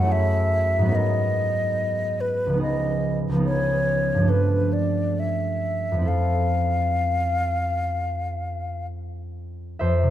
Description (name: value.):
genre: classical, impressionist duo for flute and harp.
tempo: 63-73 BPM.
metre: 4/4.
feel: rubato.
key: unclear.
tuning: A4 = 439 Hz.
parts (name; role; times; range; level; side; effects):
mellow hollow silver concert flute; melody; 0.0-8.9 s; B4 to Gb5; -25 LUFS; left 1 dB; none.
concert harp; accompaniment; 0.0-10.1 s; Db2 to E5; -23 LUFS; right 1 dB; none.
room: moderate recital hall reverb, RT60 1.5 s.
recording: close, detailed microphones.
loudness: -21 LUFS.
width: side -12 dB against mid.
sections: 0.0-9.8 A section.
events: none.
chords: 0.0 Gbm9; 1.0 Abm9; 2.6 Db9; 4.3 G9; 6.1 Fmaj7.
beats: 0.13 0.96 1.80 | 2.64 3.47 4.31 5.19 | 6.09 7.01 7.95 8.87 | 9.80.